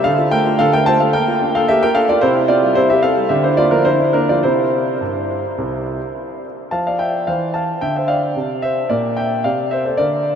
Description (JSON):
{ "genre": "classical-period piano sonatina", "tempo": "103-112 BPM", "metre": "4/4", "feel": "rubato", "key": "F major", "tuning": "A4 = 440 Hz", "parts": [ { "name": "clear concert grand piano", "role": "solo", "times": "0.0-10.4 s", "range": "C2 to A5", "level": "-14 LUFS", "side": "equal", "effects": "none" } ], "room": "wet huge ambient reverb, RT60 8.0 s", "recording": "in a vast, echoing space", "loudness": "-14 LUFS", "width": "side -8 dB against mid", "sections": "0.0-6.7 A section; 6.7-10.4 B section", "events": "none", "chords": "0.1 Dm; 1.1 Gm7/Bb; 2.2 C; 3.3 Bb/D; 4.4 C; 6.7 F5; 7.8 Dm; 8.9 Bbadd9(#11)", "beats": "| 0.06 0.60 1.14 1.68 | 2.22 2.76 3.30 3.85 | 4.43 5.00 5.58 6.15 | 6.72 7.27 7.81 8.36 | 8.90 9.45 9.99" }